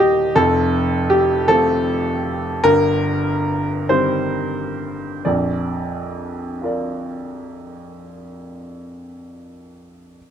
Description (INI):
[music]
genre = neoclassical minimalist piano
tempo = 43-54 BPM (dotted quarters)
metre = 6/8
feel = rubato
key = Bb major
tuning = A4 = 438 Hz
[part]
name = clear upright piano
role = solo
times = 0.0-10.2 s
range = Eb1 to Eb5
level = -18 LUFS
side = equal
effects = none
[sound]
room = light reverb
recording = close, detailed microphones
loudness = -17 LUFS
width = side -9 dB against mid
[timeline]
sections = 0.0-5.3 A section; 5.3-8.0 B section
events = slowing down 0.0-5.3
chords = 0.4 F; 2.7 Eb6/G; 5.3 Bb